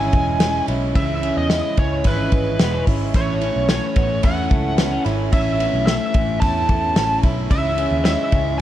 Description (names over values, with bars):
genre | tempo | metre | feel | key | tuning
jangly indie pop | 110 BPM | 4/4 | straight | C# minor | A4 = 440 Hz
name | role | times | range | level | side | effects
biting lead guitar | melody | 0.0-8.6 s | B4 to A5 | -23 LUFS | equal | overdrive
picked plugged-in steel-string acoustic guitar | accompaniment | 0.0-8.6 s | A2 to E4 | -25 LUFS | right 6 dB | none
electric guitar through a small old amp | arpeggios | 0.0-8.6 s | A2 to E4 | -27 LUFS | left 6 dB | none
vintage muted picked electric bass | bass | 0.0-8.6 s | E1 to E2 | -24 LUFS | equal | none
loose indie drum kit | drums | 0.1-8.5 s | hi-hat, kick drum, ride cymbal, snare drum | -20 LUFS | equal | vintage 12-bit sampler grit
room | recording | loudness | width
moderate club reverb, RT60 0.6 s | dark, warm production | -16 LUFS | side -12 dB against mid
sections
0.0-8.6 A section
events
none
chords
0.0 C#m; 3.1 A; 7.5 C#m